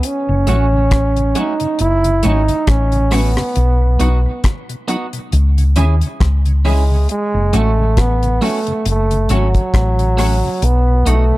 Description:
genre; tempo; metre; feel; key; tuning
roots reggae; 68 BPM; 4/4; swing 57% on 16ths; F# dorian; A4 = 439 Hz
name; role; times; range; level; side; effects
warm trombone; melody; 0.0-11.4 s; F#3 to E4; -18 LUFS; right 2 dB; tape echo
deep reggae drum kit; drums; 0.0-11.3 s; hi-hat, kick drum, rim click; -19 LUFS; equal; none
tonewheel organ; accompaniment; 0.3-11.4 s; F#2 to D#4; -26 LUFS; left 2 dB; overdrive, chorus vibrato, stopped rotary speaker
hollow-body short-scale fingered electric bass; bass; 0.3-11.3 s; F#1 to D#2; -14 LUFS; equal; none
clean electric guitar; accompaniment; 0.5-11.2 s; A3 to G#4; -25 LUFS; right 3 dB; tape echo
room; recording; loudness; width
little or no reverb; dark, warm production; -13 LUFS; side -18 dB against mid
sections
0.0-11.4 A section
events
none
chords
0.0 F#m; 3.6 B; 5.3 C#m; 7.1 F#m; 10.6 B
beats
| 0.03 0.92 1.80 2.68 | 3.56 4.44 5.33 6.21 | 7.09 7.97 8.86 9.74 | 10.62

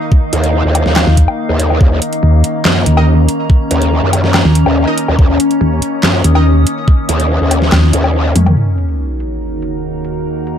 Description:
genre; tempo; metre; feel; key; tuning
heavy wobble dubstep; 142 BPM; 4/4; half-time; Eb minor; A4 = 441 Hz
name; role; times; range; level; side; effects
evolving wavetable pad; sustained chords; 0.0-10.6 s; Eb2 to Bb4; -18 LUFS; left 2 dB; chorus, built-in reverb, vintage 12-bit sampler grit, sidechain pumping
warbly tape-like pad; texture; 0.0-10.6 s; Eb4 to Eb6; -23 LUFS; equal; chorus, built-in reverb, sidechain pumping
electronic kick drum; drums; 0.1-7.0 s; none; -9 LUFS; equal; none
growl bass; bass; 0.3-8.3 s; Eb2 to Gb2; -13 LUFS; equal; chorus, overdrive
dubstep drum kit; drums; 0.3-10.6 s; crash cymbal, handclaps, hi-hat, snare drum, toms, woodblock; -15 LUFS; left 1 dB; low-pass filter on cymbals, low-pass filter on hats, low-pass filter on snare, low-pass filter on perc, low-pass filter on toms, low-pass filter on room
pulsing pluck wobble bass; bass; 1.1-8.6 s; Eb2 to F2; -9 LUFS; equal; chorus, overdrive
orchestra-hit-like synth stab; stabs; 3.0-6.4 s; Eb4 to Eb5; -22 LUFS; right 4 dB; built-in reverb, digital delay
sub drop; sound effects; 8.6-10.3 s; none; -19 LUFS; equal; none
room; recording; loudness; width
light reverb, digital ambience; dark, warm production; -10 LUFS; side -9 dB against mid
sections
0.0-8.6 A section; 8.6-10.6 B section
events
drop 0.0-8.6; drum fill 8.4; impact 8.6-10.3; filter sweep on ambient pad 8.6-10.6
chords
0.0 Eb5; 8.6 Ebm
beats
| 0.12 0.54 0.96 1.38 | 1.81 2.23 2.65 3.07 | 3.50 3.92 4.34 4.76 | 5.19 5.61 6.03 6.46 | 6.88 7.30 7.72 8.14 | 8.57 8.99 9.41 9.84 | 10.26

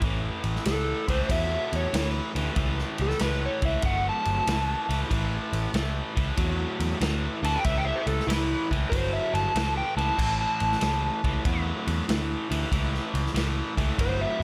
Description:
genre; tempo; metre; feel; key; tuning
blues rock power trio and southern rock; 95 BPM; 4/4; swing 67% on 8ths; A mixolydian; A4 = 437 Hz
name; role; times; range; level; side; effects
cranked stack guitar; riff; 0.0-14.4 s; A2 to F#3; -33 LUFS; equal; overdrive, spring reverb
vintage muted picked electric bass; bass; 0.0-14.4 s; G1 to E2; -31 LUFS; equal; none
vintage drum kit; drums; 0.0-14.2 s; crash cymbal, kick drum, ride cymbal, snare drum; -33 LUFS; equal; none
overdriven slide guitar; melody; 0.7-14.4 s; E4 to A5; -31 LUFS; equal; slapback echo
room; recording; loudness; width
light reverb; none; -27 LUFS; mono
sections
0.0-14.4 A section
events
electric slide guitar solo 0.0-14.4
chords
0.0 A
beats
| 0.02 0.65 1.29 1.93 | 2.56 3.20 3.83 4.47 | 5.11 5.74 6.37 7.01 | 7.64 8.28 8.91 9.54 | 10.18 10.81 11.45 12.08 | 12.71 13.35 13.98

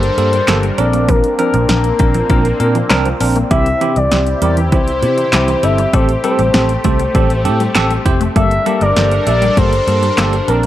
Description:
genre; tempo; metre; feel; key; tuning
synth-pop; 99 BPM; 4/4; straight; G dorian; A4 = 440 Hz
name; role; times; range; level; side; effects
expressive synth lead; melody; 0.0-10.7 s; Bb4 to E5; -17 LUFS; left 2 dB; chorus, slapback echo
bell-like tine electric piano; accompaniment; 0.0-10.7 s; Bb3 to C5; -19 LUFS; right 1 dB; medium stereo tremolo
sweeping resonant pad; sustained chords; 0.0-10.7 s; C3 to Bb4; -22 LUFS; left 1 dB; chorus
vintage muted fingered electric bass; bass; 0.0-10.7 s; F1 to C3; -17 LUFS; equal; none
punchy analog drum machine; drums; 0.0-10.7 s; handclaps, hi-hat, kick drum, snare drum; -16 LUFS; equal; overdrive
resonant blip pluck; arpeggios; 0.3-10.7 s; E3 to E4; -24 LUFS; equal; chorus, phaser, slapback echo
room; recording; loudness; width
light reverb, digital ambience; none; -11 LUFS; side -13 dB against mid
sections
0.0-10.7 A section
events
none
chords
0.0 Gmadd9; 0.8 Bbadd9; 3.5 C; 5.9 Am7; 8.4 Gmadd9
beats
0.48 | 1.09 1.69 2.30 2.90 | 3.51 4.12 4.72 5.33 | 5.93 6.54 7.15 7.75 | 8.36 8.96 9.57 10.18

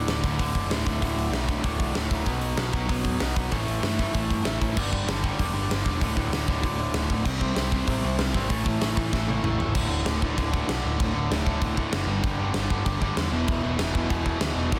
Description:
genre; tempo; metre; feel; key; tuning
punk rock; 193 BPM; 4/4; straight; D major; A4 = 440 Hz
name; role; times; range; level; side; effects
raw garage guitar; riff; 0.0-14.8 s; D2 to C4; -30 LUFS; equal; overdrive
overdriven picked electric bass; bass; 0.0-14.8 s; D1 to G2; -32 LUFS; equal; none
big rock drum kit; drums; 0.1-14.8 s; crash cymbal, hi-hat, kick drum, snare drum, toms; -30 LUFS; equal; soft clipping on kick
room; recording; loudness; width
little or no reverb; dense, heavily limited modern master; -26 LUFS; mono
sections
0.0-4.8 A section; 4.8-9.7 B section; 9.7-14.8 C section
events
drum fill 9.1-9.7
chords
0.0 D5; 2.3 B5; 3.5 A5; 4.8 G5; 6.0 D5; 7.2 C5; 8.5 A5; 9.7 D5; 12.1 G5; 13.3 E5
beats
0.07 0.38 0.70 | 1.01 1.32 1.64 1.95 | 2.26 2.57 2.88 3.20 | 3.51 3.82 4.13 4.45 | 4.76 5.07 5.38 5.69 | 6.00 6.32 6.63 6.94 | 7.25 7.56 7.87 8.19 | 8.50 8.81 9.12 9.43 | 9.74 10.05 10.37 10.68 | 10.99 11.30 11.61 11.92 | 12.23 12.54 12.86 13.17 | 13.48 13.79 14.10 14.41 | 14.72

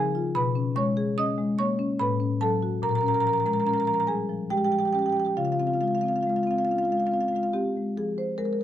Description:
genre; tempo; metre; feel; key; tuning
classical, contemporary piece for solo marimba; 71 BPM; 3/4; uneven beats, rubato; unclear; A4 = 440 Hz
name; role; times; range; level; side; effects
marimba with medium mallets; solo; 0.0-8.6 s; A2 to D#6; -23 LUFS; equal; none
room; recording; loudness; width
moderate stone room reverb, RT60 1.1 s; dark, warm production; -23 LUFS; side -11 dB against mid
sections
0.0-8.0 A section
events
none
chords
0.4 B69; 2.0 A69; 2.8 Bbm7; 5.4 Dbmaj7; 8.0 Fm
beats
| 0.36 1.18 2.00 | 2.83 3.66 4.50 | 5.36 6.24 7.10 | 7.96

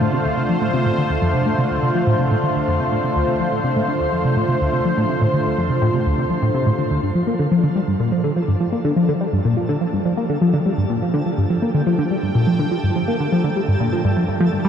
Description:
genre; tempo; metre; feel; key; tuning
ambient, sequencer-driven space music; 124 BPM; 4/4; straight; D minor, G minor from 7.0 s; A4 = 440 Hz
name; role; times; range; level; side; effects
sweeping resonant pad; sustained chords; 0.0-14.7 s; D3 to G5; -22 LUFS; equal; chorus
tight sequenced synth; riff; 0.0-14.7 s; D2 to Bb3; -18 LUFS; equal; chorus, tape echo
twinkling granular texture; texture; 7.6-14.7 s; A4; -34 LUFS; right 1 dB; built-in reverb
room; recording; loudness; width
wet shimmer reverb, RT60 6.7 s; dark, warm production; -17 LUFS; side -8 dB against mid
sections
0.0-7.0 A section; 7.0-14.7 B section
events
filter sweep on synth arpeggio sound 0.0-7.0; fade-in on analog synth pad 7.0-14.7; fade-in on synth texture 7.0-14.7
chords
0.0 Dm; 7.0 Gsus2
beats
0.26 0.74 | 1.23 1.71 2.19 2.68 | 3.16 3.65 4.13 4.61 | 5.10 5.58 6.06 6.55 | 7.03 7.52 8.00 8.48 | 8.97 9.45 9.94 10.42 | 10.90 11.39 11.87 12.35 | 12.84 13.32 13.81 14.29

